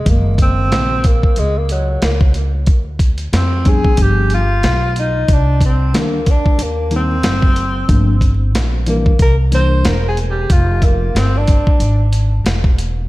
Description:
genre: hip hop, jazz-hop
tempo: 92 BPM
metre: 4/4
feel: swing 57% on 16ths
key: F dorian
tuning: A4 = 440 Hz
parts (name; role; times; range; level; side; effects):
- breathy tenor saxophone; melody; 0.0-12.0 s; Gb3 to C5; -20 LUFS; equal; tape echo
- upright bass; bass; 0.0-13.1 s; E1 to F2; -16 LUFS; equal; none
- mellow tine electric piano; accompaniment; 0.1-9.9 s; Db3 to Eb4; -22 LUFS; left 1 dB; overdrive, wide subtle chorus
- dusty soul sampler-style drum kit; drums; 0.1-13.0 s; hi-hat, kick drum, snare drum; -14 LUFS; equal; none
room: light reverb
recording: vinyl crackle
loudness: -12 LUFS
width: side -18 dB against mid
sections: 0.0-13.1 A section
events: tenor saxophone solo 0.0-13.1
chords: 0.1 Gb6; 2.7 G7; 5.3 Cm9; 7.9 Gm7; 9.2 C7; 10.5 Fm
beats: | 0.07 0.72 1.37 2.02 | 2.67 3.33 3.98 4.63 | 5.28 5.93 6.59 7.24 | 7.89 8.54 9.20 9.85 | 10.50 11.15 11.80 12.46

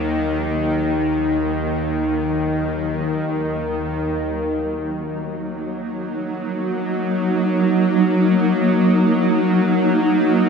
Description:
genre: dark ambient drone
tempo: free time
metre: none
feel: none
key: Eb minor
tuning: A4 = 440 Hz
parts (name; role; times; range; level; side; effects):
- granular cloud pad; sustained chords; 0.0-10.5 s; Gb3 to Eb4; -21 LUFS; right 1 dB; built-in reverb
- bowed-like drone; drone; 0.0-10.5 s; Eb2 to Gb3; -20 LUFS; left 1 dB; built-in reverb
room: wet huge ambient reverb, RT60 8.4 s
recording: none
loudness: -18 LUFS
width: side -6 dB against mid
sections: 0.0-4.1 A section; 4.1-10.5 B section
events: none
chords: 0.0 Ebm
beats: free time

